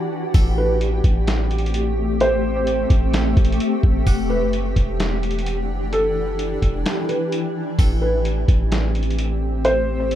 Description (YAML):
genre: hip hop, atmospheric cloud-rap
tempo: 129 BPM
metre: 4/4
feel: half-time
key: A dorian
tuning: A4 = 440 Hz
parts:
  - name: felt-muted upright piano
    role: melody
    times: 0.0-10.2 s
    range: A4 to C5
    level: -23 LUFS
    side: right 1 dB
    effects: tape echo
  - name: shimmering ambient pad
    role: sustained chords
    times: 0.0-10.2 s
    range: E3 to F#5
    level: -24 LUFS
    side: left 1 dB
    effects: chorus, built-in reverb, sidechain pumping
  - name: long sustained 808-style bass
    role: bass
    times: 0.3-10.2 s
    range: E1 to A1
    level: -21 LUFS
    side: equal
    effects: none
  - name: lo-fi sampler-style drum kit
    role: drums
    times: 0.3-10.2 s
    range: hi-hat, kick drum, snare drum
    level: -22 LUFS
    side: equal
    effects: none
  - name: harpsichord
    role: texture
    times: 0.3-10.2 s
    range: G4 to D6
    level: -36 LUFS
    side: right 2 dB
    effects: none
room: digital ambience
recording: rough home demo mix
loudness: -17 LUFS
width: side -11 dB against mid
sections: 0.0-10.2 A section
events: kick muted 6.9-7.8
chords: 0.3 Am7; 4.1 Em9; 7.8 Am7